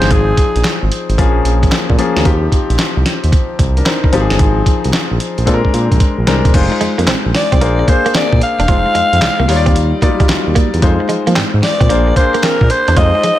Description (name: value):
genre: R&B, new jack swing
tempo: 112 BPM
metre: 4/4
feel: swing 67% on 16ths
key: unclear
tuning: A4 = 442 Hz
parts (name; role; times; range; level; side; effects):
- breathy alto saxophone; melody; 0.0-0.9, 7.4-13.4 s; Ab4 to F5; -16 LUFS; left 1 dB; none
- warm grand piano; accompaniment; 0.0-13.4 s; F3 to D5; -17 LUFS; left 4 dB; none
- smooth synth bass; bass; 0.0-13.3 s; Fb1 to F3; -15 LUFS; equal; none
- dusty soul sampler-style drum kit; drums; 0.0-13.4 s; crash cymbal, handclaps, hi-hat, kick drum, snare drum; -14 LUFS; equal; none
- direct-recorded clean electric guitar; riff; 6.7-13.4 s; G3 to F4; -21 LUFS; right 5 dB; lush chorus
room: little or no reverb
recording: none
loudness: -10 LUFS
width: side -13 dB against mid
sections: 0.0-6.5 A section; 6.5-13.4 B section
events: drum fill 5.5-6.5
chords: 0.0 Ab6; 1.2 Bbm7; 2.3 Eb69; 4.1 Ab6; 5.5 Bb9; 6.5 Fm7; 7.6 Bb9; 8.7 Fm7; 9.5 Ebmaj9; 10.8 Fm7; 11.9 Bb9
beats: | 0.11 0.65 1.18 1.72 | 2.25 2.79 3.32 3.86 | 4.39 4.93 5.47 6.00 | 6.54 7.07 7.61 8.14 | 8.68 9.22 9.75 10.29 | 10.82 11.36 11.89 12.43 | 12.97